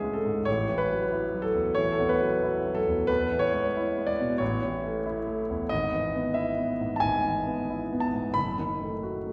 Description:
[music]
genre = classical, romantic character piece for solo piano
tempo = 91 BPM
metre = 4/4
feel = rubato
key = unclear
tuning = A4 = 441 Hz
[part]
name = warm concert grand piano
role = solo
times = 0.0-9.3 s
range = F#1 to B5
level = -28 LUFS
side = equal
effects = none
[sound]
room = wet scoring stage reverb, RT60 1.5 s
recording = recorded in a church or concert hall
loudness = -28 LUFS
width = mono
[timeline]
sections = 0.0-9.3 A section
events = none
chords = 0.5 A5; 3.1 E; 4.4 A; 5.7 E/G#; 8.4 D#dim/F#

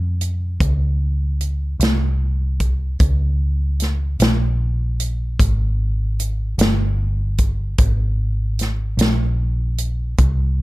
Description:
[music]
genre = slow blues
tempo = 50 BPM (dotted quarters)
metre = 12/8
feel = straight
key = unclear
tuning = A4 = 444 Hz
[part]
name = vintage muted fingered electric bass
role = bass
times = 0.0-10.6 s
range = G1 to F2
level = -19 LUFS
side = equal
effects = none
[part]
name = natural country drum kit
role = drums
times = 0.2-10.4 s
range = hi-hat, kick drum, snare drum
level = -18 LUFS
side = equal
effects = none
[sound]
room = little or no reverb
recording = none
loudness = -17 LUFS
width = side -19 dB against mid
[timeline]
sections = 0.0-10.6 A section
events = none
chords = none

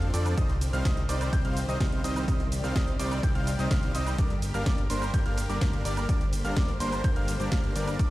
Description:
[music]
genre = EDM, festival progressive house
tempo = 126 BPM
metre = 4/4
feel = straight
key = G minor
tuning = A4 = 442 Hz
[part]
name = dark studio string section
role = sustained chords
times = 0.0-8.1 s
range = D3 to D5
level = -38 LUFS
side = left 1 dB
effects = vintage 12-bit sampler grit, sidechain pumping
[part]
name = warm concert grand piano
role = arpeggios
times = 0.0-8.1 s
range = C6 to G6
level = -37 LUFS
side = right 2 dB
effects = sidechain pumping, dub echo
[part]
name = supersaw chords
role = riff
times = 0.0-8.1 s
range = F3 to G5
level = -33 LUFS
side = equal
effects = sidechain pumping, dub echo
[part]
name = fat analog bass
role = bass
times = 0.0-8.1 s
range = G1 to G2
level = -31 LUFS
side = equal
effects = sidechain pumping
[part]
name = house drum kit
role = drums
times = 0.0-8.1 s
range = hi-hat, ride cymbal, shaker, snare drum, woodblock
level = -37 LUFS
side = right 1 dB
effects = none
[part]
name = electronic kick drum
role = drums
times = 0.4-8.1 s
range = none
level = -28 LUFS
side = equal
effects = overdrive
[sound]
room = little or no reverb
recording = played on a big sound system in a bare room, stone room reverb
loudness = -25 LUFS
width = side -17 dB against mid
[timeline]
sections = 0.0-8.1 A section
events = none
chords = 0.4 Cm; 4.2 Gm

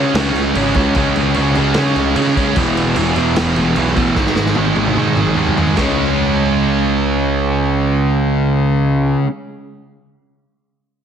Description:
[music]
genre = hard rock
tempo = 150 BPM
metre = 4/4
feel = straight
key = C# minor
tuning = A4 = 440 Hz
[part]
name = biting overdriven guitar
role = riff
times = 0.0-9.3 s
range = E2 to C#4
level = -18 LUFS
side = right 8 dB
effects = none
[part]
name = overdriven semi-hollow guitar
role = riff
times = 0.0-9.3 s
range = E2 to C#4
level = -21 LUFS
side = equal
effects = none
[part]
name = sludgy distorted guitar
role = riff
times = 0.0-9.3 s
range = E2 to C#4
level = -20 LUFS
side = left 8 dB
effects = overdrive
[part]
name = fuzz picked electric bass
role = bass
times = 0.0-9.1 s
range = E1 to C#3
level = -20 LUFS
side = equal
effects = overdrive
[part]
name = raw garage drum kit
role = drums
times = 0.1-5.9 s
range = crash cymbal, kick drum, snare drum, toms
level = -21 LUFS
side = equal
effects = none
[sound]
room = light reverb, small room ambience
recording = heavily compressed radio sound, multiband compression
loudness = -13 LUFS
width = side -8 dB against mid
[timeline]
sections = 0.0-5.8 A section; 5.8-9.0 B section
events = drum fill 4.2-5.8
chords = 0.0 C#5; 2.6 E5; 4.2 G#5; 5.8 C#5

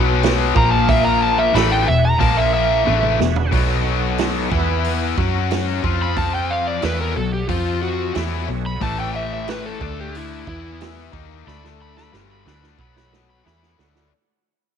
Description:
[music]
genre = blues rock power trio and southern rock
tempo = 91 BPM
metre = 4/4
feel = straight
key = unclear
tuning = A4 = 439 Hz
[part]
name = overdriven tonewheel organ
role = sustained chords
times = 0.0-14.1 s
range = A3 to G#5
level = -30 LUFS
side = right 10 dB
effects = slow rotary speaker, chorus vibrato
[part]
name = overdriven electric guitar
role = riff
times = 0.0-14.1 s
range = E2 to F#4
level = -22 LUFS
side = left 11 dB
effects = none
[part]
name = vintage muted fingered electric bass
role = bass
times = 0.0-14.1 s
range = E1 to F#2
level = -22 LUFS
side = right 1 dB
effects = none
[part]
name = vintage drum kit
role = drums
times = 0.2-14.1 s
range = hi-hat, kick drum, snare drum, toms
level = -24 LUFS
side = right 5 dB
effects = none
[part]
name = overdriven slide guitar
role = melody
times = 0.6-14.1 s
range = E4 to B5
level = -21 LUFS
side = right 1 dB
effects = none
[sound]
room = light reverb, studio reverb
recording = 1960s-style stereo with parts hard left and right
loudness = -16 LUFS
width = side -8 dB against mid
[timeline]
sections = 0.0-14.1 A section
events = electric slide guitar solo 0.0-14.1; fade-out 1.4-14.1; drum fill 2.9-3.5, 11.5-14.1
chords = 0.0 B5; 0.6 A#5; 1.6 E7; 2.2 A#5; 2.9 E7; 3.5 B7; 4.5 E5; 5.2 F#5; 5.8 F5; 6.8 B7; 7.5 F5; 8.2 B7; 8.8 A7; 9.8 D5; 10.5 E5; 11.1 D#5; 11.5 D5; 12.1 Gmaj9; 12.8 B5

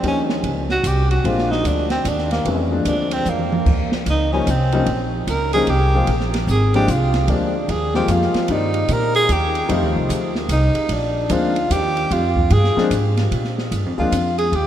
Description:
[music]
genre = jazz, small-group swing and bop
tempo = 149 BPM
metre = 3/4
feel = swing 64% on 8ths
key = Bb mixolydian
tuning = A4 = 440 Hz
[part]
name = breathy tenor saxophone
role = second line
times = 0.0-14.7 s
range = Bb3 to Bb4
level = -21 LUFS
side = right 1 dB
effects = none
[part]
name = warm grand piano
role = accompaniment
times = 0.0-14.1 s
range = Eb3 to D5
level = -24 LUFS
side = left 4 dB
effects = none
[part]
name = upright bass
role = bass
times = 0.0-14.7 s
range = Ab1 to Bb2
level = -20 LUFS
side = equal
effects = none
[part]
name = open jazz drum kit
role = drums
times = 0.0-14.6 s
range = crash cymbal, hi-hat, kick drum, ride cymbal, snare drum, toms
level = -26 LUFS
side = right 1 dB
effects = none
[sound]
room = wet cathedral reverb, RT60 6.1 s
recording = in a vast, echoing space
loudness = -16 LUFS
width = side -10 dB against mid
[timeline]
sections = 0.0-13.3 A section; 13.3-14.7 A section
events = tenor saxophone solo 0.0-14.7; drum fill 3.3-3.7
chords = 0.0 Eb7; 1.2 Bb7; 3.7 Eb7; 6.1 Bb7; 8.5 Cm7; 9.7 F7; 10.9 Bb7; 13.3 Bb

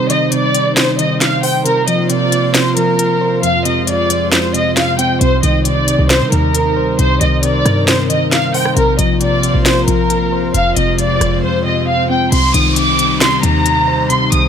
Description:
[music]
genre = hip hop, trap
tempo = 135 BPM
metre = 4/4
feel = half-time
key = C minor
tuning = A4 = 436 Hz
[part]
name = warm studio violin section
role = melody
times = 0.0-14.5 s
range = Bb4 to Eb6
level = -16 LUFS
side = equal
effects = low-pass filter
[part]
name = soft electric-piano-like synth keys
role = accompaniment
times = 0.0-14.5 s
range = F2 to C5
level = -17 LUFS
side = left 1 dB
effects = chorus, low-pass filter
[part]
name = airy breathy pad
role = sustained chords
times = 0.0-14.5 s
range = C3 to C5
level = -21 LUFS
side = right 1 dB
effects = chorus
[part]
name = trap drum kit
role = drums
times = 0.1-14.4 s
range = finger snaps, hi-hat, rim click, snare drum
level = -16 LUFS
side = equal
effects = none
[part]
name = short 808-style bass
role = bass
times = 5.2-14.5 s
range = Eb1 to C3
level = -17 LUFS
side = equal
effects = none
[part]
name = swell and downlifter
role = sound effects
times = 10.7-14.5 s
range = none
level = -25 LUFS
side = equal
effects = none
[sound]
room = light reverb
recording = none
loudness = -11 LUFS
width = side -8 dB against mid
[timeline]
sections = 0.0-12.3 A section; 12.3-14.5 B section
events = break 0.0-5.2; drums muted 11.4-12.3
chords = 0.0 Cm; 1.7 Bbsus2; 3.4 Fm; 5.2 Cm; 8.8 Bbsus2; 10.5 Fm; 12.3 Cm

